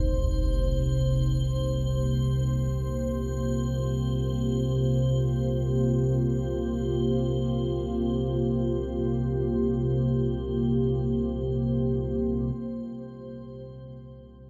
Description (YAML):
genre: ambient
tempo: free time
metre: none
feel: none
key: unclear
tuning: A4 = 440 Hz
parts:
  - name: dark analog pad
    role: sustained chords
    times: 0.0-14.5 s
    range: C3 to G4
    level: -30 LUFS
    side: equal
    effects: chorus
  - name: deep rumbling drone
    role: drone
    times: 0.1-14.5 s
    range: C2 to C3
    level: -32 LUFS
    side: equal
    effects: built-in reverb
  - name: icy glass pad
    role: texture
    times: 0.0-12.6 s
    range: C5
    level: -40 LUFS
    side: equal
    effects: chorus, built-in reverb
room: wet cathedral reverb, RT60 6.1 s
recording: none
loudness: -27 LUFS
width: mono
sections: 0.0-12.6 A section; 12.6-14.5 B section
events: none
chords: 0.0 Cm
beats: free time